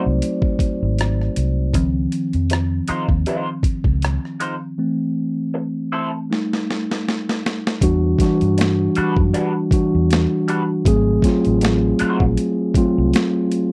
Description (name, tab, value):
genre	R&B, neo-soul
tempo	79 BPM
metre	4/4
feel	swing 55% on 16ths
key	unclear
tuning	A4 = 441 Hz
part	electric guitar through a small old amp	second line	0.0-12.2 s	G3 to B#4	-27 LUFS	equal	wah
part	mellow tine electric piano	accompaniment	0.0-13.7 s	D#3 to D5	-22 LUFS	equal	none
part	vintage muted fingered electric bass	bass	0.1-13.1 s	G#1 to G2	-22 LUFS	equal	none
part	boom bap sampler-style drum kit	drums	0.2-13.7 s	hi-hat, kick drum, rim click, snare drum	-23 LUFS	equal	none
room	little or no reverb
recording	dry, close 1970s-style studio recording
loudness	-19 LUFS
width	mono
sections	0.0-7.8 A section; 7.8-13.7 B section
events	tine electric piano solo 0.0-7.8; break 4.8-7.8; drum fill 6.3-7.8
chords	0.0 G#7b9; 1.7 C#maj9; 4.8 Am/E; 6.3 Gsus2; 7.8 Em9; 10.8 G#7b9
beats	0.22 0.98 | 1.74 2.50 3.25 4.01 | 4.77 5.53 6.29 7.05 | 7.81 8.57 9.33 10.09 | 10.85 11.61 12.37 13.13